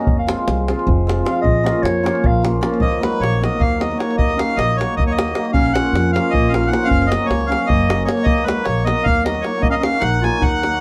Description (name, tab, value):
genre	balkan folk, Balkan wedding band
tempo	308 BPM (eighths)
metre	7/8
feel	straight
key	Eb minor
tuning	A4 = 440 Hz
part	mellow clarinet	second line	0.0-10.8 s	Ab3 to F5	-26 LUFS	equal	none
part	cimbalom	accompaniment	0.0-10.8 s	F3 to Gb4	-24 LUFS	equal	none
part	upright bass	bass	0.1-10.8 s	F1 to F2	-24 LUFS	equal	none
part	davul	percussion	0.1-10.7 s	none	-23 LUFS	equal	none
part	accordion	melody	2.8-10.8 s	Cb5 to Ab5	-23 LUFS	equal	none
room	moderate studio ambience, RT60 0.5 s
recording	none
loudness	-17 LUFS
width	mono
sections	0.0-2.8 A section; 2.8-10.8 B section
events	clarinet solo 0.0-2.8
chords	0.1 Fm; 1.4 Bbm; 2.8 Ebm; 5.5 Bbm; 6.9 Gb; 8.3 Ebm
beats	| 0.08 0.28 0.47 0.67 0.86 1.06 1.25 | 1.45 1.64 1.83 2.03 2.22 2.42 2.61 | 2.81 3.00 3.20 3.39 3.59 3.78 3.98 | 4.17 4.37 4.56 4.76 4.95 5.15 5.34 | 5.54 5.73 5.93 6.12 6.32 6.51 6.71 | 6.90 7.10 7.29 7.49 7.68 7.88 8.07 | 8.27 8.46 8.66 8.85 9.05 9.24 9.44 | 9.63 9.83 10.02 10.22 10.41 10.61 10.80